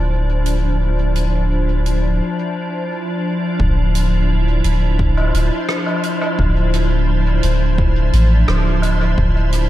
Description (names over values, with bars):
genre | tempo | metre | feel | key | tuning
ambient dub | 86 BPM | 4/4 | straight | D minor | A4 = 438 Hz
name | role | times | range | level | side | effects
soft additive organ-like pad | sustained chords | 0.0-9.7 s | F3 to C5 | -20 LUFS | equal | ensemble chorus, built-in reverb
soft dub sub bass | bass | 0.0-9.7 s | D1 to A1 | -15 LUFS | equal | none
soft-mallet drum kit | drums | 0.5-9.7 s | hi-hat, rim click, woodblock | -26 LUFS | right 1 dB | small room ambience, dub echo
electronic kick drum | drums | 3.6-9.3 s | none | -21 LUFS | equal | overdrive, small room ambience
room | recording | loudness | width
studio ambience | echo-heavy mix | -15 LUFS | side -14 dB against mid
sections
0.0-3.6 A section; 3.6-9.7 B section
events
break 2.2-3.6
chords
0.0 Dm9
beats
0.11 | 0.81 1.51 2.20 2.90 | 3.60 4.30 5.00 5.69 | 6.39 7.09 7.79 8.48 | 9.18